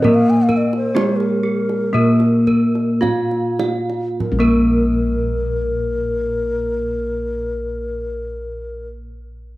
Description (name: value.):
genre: Javanese gamelan.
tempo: 48-68 BPM.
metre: 4/4.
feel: straight.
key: unclear.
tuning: A4 = 440 Hz.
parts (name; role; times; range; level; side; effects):
gamelan-type bronze metallophone; melody; 0.0-9.1 s; Ab3-45c to F4+25c; -20 LUFS; right 1 dB; cassette tape.
mellow hollow bass bansuri; second line; 0.0-8.9 s; Bb4 to Ab5-46c; -23 LUFS; left 2 dB; none.
gamelan-type bronze metallophone; accompaniment; 0.0-9.1 s; Bb3; -21 LUFS; left 1 dB; none.
gamelan-type bronze metallophone; arpeggios; 0.0-9.1 s; Ab4-45c to F5+25c; -28 LUFS; right 3 dB; none.
gamelan-type bossed gongs; bass; 0.0-9.0 s; Bb1 to Bb4; -24 LUFS; equal; none.
kendang; percussion; 0.0-4.8 s; none; -25 LUFS; right 3 dB; none.
room: light reverb, studio ambience.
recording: home recording on cassette.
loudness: -16 LUFS.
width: side -17 dB against mid.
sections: 0.0-4.2 A section; 4.2-9.1 B section.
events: slowing down 0.0-4.2.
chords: none.